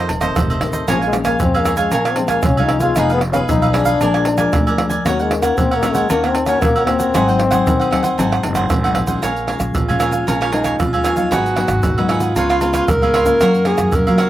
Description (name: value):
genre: samba and choro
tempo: 115 BPM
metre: 4/4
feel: straight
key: Bb minor from 9.2 s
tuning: A4 = 440 Hz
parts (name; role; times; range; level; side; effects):
- mellow trombone; second line; 0.0-8.7 s; F3 to F4; -19 LUFS; left 4 dB; none
- cavaquinho; accompaniment; 0.0-14.3 s; D4 to Ab5; -21 LUFS; right 3 dB; slapback echo
- nylon-string guitar; accompaniment; 0.0-14.3 s; F2 to Ab4; -23 LUFS; left 4 dB; none
- upright bass; bass; 0.0-14.3 s; Eb1 to Gb3; -22 LUFS; equal; none
- agogo bells, pandeiro, tube shaker, surdo and tamborim; percussion; 0.1-14.3 s; none; -20 LUFS; right 2 dB; none
- breathy alto saxophone; melody; 9.8-14.3 s; Eb4 to Bb4; -18 LUFS; right 1 dB; none
room: light reverb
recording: recorded outdoors, with no room sound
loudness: -14 LUFS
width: side -13 dB against mid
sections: 0.0-9.2 A section; 9.2-14.3 B section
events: trombone solo 0.0-9.2; alto saxophone solo 9.2-14.3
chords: 0.0 F7; 0.9 Bbm7; 3.0 Fm7b5; 4.0 Bb7; 5.1 Ebm7; 7.1 Ab7; 9.2 Bbm7; 11.3 Abm7; 12.4 Db7; 13.4 Gbmaj7